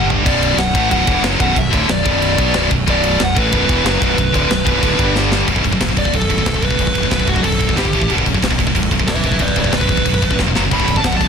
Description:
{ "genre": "heavy metal", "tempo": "184 BPM", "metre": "4/4", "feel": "straight", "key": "B minor", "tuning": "A4 = 440 Hz", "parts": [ { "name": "smooth overdriven lead guitar", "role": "melody", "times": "0.0-11.3 s", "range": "F#4 to B5", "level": "-20 LUFS", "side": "right 1 dB", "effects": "none" }, { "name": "heavy high-gain guitar", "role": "riff", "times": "0.0-11.3 s", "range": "B1 to B3", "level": "-20 LUFS", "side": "left 15 dB", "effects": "distortion" }, { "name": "high-gain distorted guitar", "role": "riff", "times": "0.0-11.3 s", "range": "B1 to B3", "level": "-20 LUFS", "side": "right 12 dB", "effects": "distortion" }, { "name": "overdriven electric guitar", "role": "riff", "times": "0.0-5.5, 10.7-11.3 s", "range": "B1 to D4", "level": "-22 LUFS", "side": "left 1 dB", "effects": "none" }, { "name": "fuzz fingered electric bass", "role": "bass", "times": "0.0-11.3 s", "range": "B0 to B1", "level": "-21 LUFS", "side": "equal", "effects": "overdrive" }, { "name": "tight metal drum kit", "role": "drums", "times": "0.1-11.3 s", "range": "crash cymbal, kick drum, ride cymbal, snare drum, toms", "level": "-19 LUFS", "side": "equal", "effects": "none" } ], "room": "little or no reverb", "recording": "dense, heavily limited modern master", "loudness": "-13 LUFS", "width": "side -6 dB against mid", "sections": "0.0-5.5 A section; 5.5-11.3 B section", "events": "drum fill 0.0, 5.2-5.5, 10.4-10.7; lead electric guitar solo 5.5-11.3", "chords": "0.3 Bm; 5.0 G5; 5.5 B5; 7.8 G5; 7.9 A5; 8.1 B5; 10.6 F#5; 10.7 Bm" }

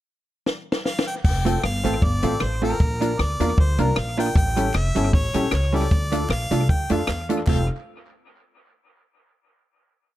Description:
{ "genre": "ska", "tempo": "154 BPM", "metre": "4/4", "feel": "swing 55% on 8ths", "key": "F major", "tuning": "A4 = 437 Hz", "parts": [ { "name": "compact cocktail drum kit", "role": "drums", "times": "0.5-7.6 s", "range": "crash cymbal, hi-hat, kick drum, rim click, snare drum", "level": "-22 LUFS", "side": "equal", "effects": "none" }, { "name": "bright harmonica", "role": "melody", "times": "0.9-7.7 s", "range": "Bb4 to G5", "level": "-28 LUFS", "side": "equal", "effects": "none" }, { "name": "upright bass", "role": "bass", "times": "1.2-7.7 s", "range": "F1 to F2", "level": "-24 LUFS", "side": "equal", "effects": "none" }, { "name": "clear upright piano", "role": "stabs", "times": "1.4-7.6 s", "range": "C4 to Bb4", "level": "-28 LUFS", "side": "left 5 dB", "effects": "none" }, { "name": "vintage hollow-body jazz guitar", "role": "accompaniment", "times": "1.5-7.6 s", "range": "G3 to F4", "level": "-26 LUFS", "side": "right 6 dB", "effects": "none" }, { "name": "group handclap", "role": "percussion", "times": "4.7-7.7 s", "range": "none", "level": "-43 LUFS", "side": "right 3 dB", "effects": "none" } ], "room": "little or no reverb", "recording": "none", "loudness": "-19 LUFS", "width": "side -14 dB against mid", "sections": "0.0-1.2 pickup bar; 1.2-7.5 head; 7.5-9.0 final chord", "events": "drum fill 0.5-1.2", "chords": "0.0 N.C.; 1.2 F; 2.8 Bb; 4.4 A7; 5.9 Dm; 7.5 F" }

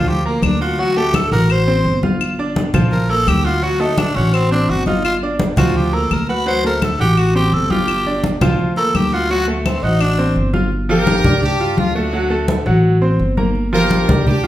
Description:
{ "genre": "latin, salsa", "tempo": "169 BPM", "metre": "4/4", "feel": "straight", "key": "G minor", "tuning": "A4 = 440 Hz", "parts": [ { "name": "growling tenor saxophone", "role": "melody", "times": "0.0-10.4 s", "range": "A3 to C5", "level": "-19 LUFS", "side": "equal", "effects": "none" }, { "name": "bright grand piano", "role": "accompaniment", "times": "0.0-14.5 s", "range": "F3 to F#6", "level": "-20 LUFS", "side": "right 1 dB", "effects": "none" }, { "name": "upright bass", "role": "bass", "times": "0.0-14.5 s", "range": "G1 to G2", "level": "-19 LUFS", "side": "equal", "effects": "none" }, { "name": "congas", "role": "percussion", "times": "0.1-14.5 s", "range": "none", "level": "-20 LUFS", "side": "left 1 dB", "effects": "none" }, { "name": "claves", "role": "percussion", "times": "0.4-10.2 s", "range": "none", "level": "-27 LUFS", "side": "left 7 dB", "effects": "none" }, { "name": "bright horn section", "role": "melody", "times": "10.9-14.5 s", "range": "D4 to Bb4", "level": "-18 LUFS", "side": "left 1 dB", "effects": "none" } ], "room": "wet large studio reverb, RT60 0.8 s", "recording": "band playing live in one room", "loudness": "-14 LUFS", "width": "side -13 dB against mid", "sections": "0.0-10.7 A section; 10.7-14.5 B section", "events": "tenor saxophone solo 0.0-10.7", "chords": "0.0 Gm7; 0.8 D7; 2.2 Gm7; 3.6 D7; 5.0 Gm7; 6.5 D7; 7.9 Gm7; 9.3 D7; 10.7 Gm7; 12.1 D7; 13.6 Gm7" }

